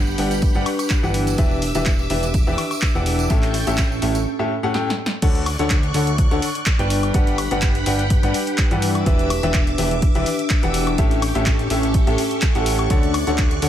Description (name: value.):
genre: piano house.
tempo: 125 BPM.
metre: 4/4.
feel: swing 54% on 16ths.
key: D major.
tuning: A4 = 440 Hz.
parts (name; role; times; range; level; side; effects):
string machine, violins; sustained chords; 0.0-13.7 s; G4 to F#6; -29 LUFS; right 1 dB; ensemble chorus, sidechain pumping.
fat analog bass; bass; 0.0-13.7 s; E1 to G2; -23 LUFS; equal; sidechain pumping.
warbly tape-like pad; texture; 0.0-13.7 s; C#4 to C#6; -27 LUFS; equal; chorus, built-in reverb, sidechain pumping.
tambourine; percussion; 0.1-4.2 s; none; -35 LUFS; right 7 dB; none.
clear concert grand piano; riff; 0.2-13.7 s; A2 to G5; -23 LUFS; left 1 dB; sidechain pumping, digital delay.
punchy analog drum machine; drums; 0.2-13.7 s; crash cymbal, handclaps, hi-hat, snare drum, woodblock; -26 LUFS; left 1 dB; none.
electronic kick drum; drums; 0.4-13.5 s; none; -18 LUFS; equal; none.
room: digital ambience.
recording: none.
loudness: -17 LUFS.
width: side -10 dB against mid.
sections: 0.0-5.2 A section; 5.2-13.7 B section.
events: break 4.3-5.2; drum fill 4.7-5.2; drop 5.2-13.7.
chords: 0.0 Gmaj7; 1.1 Em7; 3.3 A7; 5.2 Dmaj7; 6.9 Gmaj7; 8.8 Em7; 11.0 A7; 12.9 Gmaj7(no3) (rootless).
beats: 0.42 0.90 | 1.38 1.86 2.34 2.82 | 3.30 3.78 4.26 4.74 | 5.22 5.70 6.18 6.66 | 7.14 7.62 8.10 8.58 | 9.06 9.54 10.02 10.50 | 10.98 11.46 11.94 12.42 | 12.90 13.38.